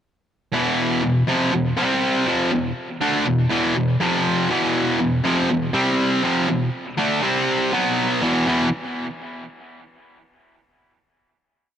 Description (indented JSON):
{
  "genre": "metal",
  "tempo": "121 BPM",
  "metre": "4/4",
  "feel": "straight",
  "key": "E minor",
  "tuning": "A4 = 440 Hz",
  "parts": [
    { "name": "distorted electric guitar", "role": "solo", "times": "0.5-8.7 s", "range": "E2 to D4", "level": "-18 LUFS", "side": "equal", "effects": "overdrive, tape echo" }
  ],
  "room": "light reverb",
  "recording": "rough home demo mix",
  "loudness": "-18 LUFS",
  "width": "side -9 dB against mid",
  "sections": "0.5-8.5 riff; 8.5-10.5 final chord",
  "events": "none",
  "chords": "0.5 E5; 1.8 C5; 2.3 E5; 4.0 F5; 4.5 E5; 5.7 C5; 6.2 E5; 7.2 C5; 7.7 B5; 8.2 E5"
}